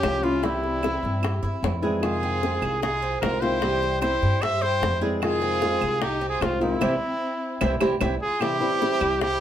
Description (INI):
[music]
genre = latin, Cuban son and guajira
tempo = 150 BPM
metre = 4/4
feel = straight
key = unclear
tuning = A4 = 440 Hz
[part]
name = warm trumpet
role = melody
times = 0.0-9.4 s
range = E4 to E5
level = -26 LUFS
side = equal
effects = none
[part]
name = bright studio violin section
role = second line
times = 0.0-9.4 s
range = C4 to C5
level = -35 LUFS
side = left 1 dB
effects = none
[part]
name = flamenco guitar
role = accompaniment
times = 0.0-9.2 s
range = C3 to F4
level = -28 LUFS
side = left 2 dB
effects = none
[part]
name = Cuban tres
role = arpeggios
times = 0.0-9.4 s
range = G3 to Ab4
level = -29 LUFS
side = right 3 dB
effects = none
[part]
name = upright bass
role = bass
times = 0.0-9.4 s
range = C2 to G2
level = -29 LUFS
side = equal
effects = none
[part]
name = bongos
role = percussion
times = 0.0-9.4 s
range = none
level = -31 LUFS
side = left 3 dB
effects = none
[part]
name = claves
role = percussion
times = 0.0-9.2 s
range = none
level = -35 LUFS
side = right 6 dB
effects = none
[sound]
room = wet small room reverb, RT60 0.6 s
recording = band playing live in one room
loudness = -22 LUFS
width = side -10 dB against mid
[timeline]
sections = 0.0-8.4 A section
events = band accent 6.8-8.4; drum fill 7.6-8.4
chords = 0.4 C; 2.0 Fm7; 3.6 C; 5.2 Fm7; 6.8 C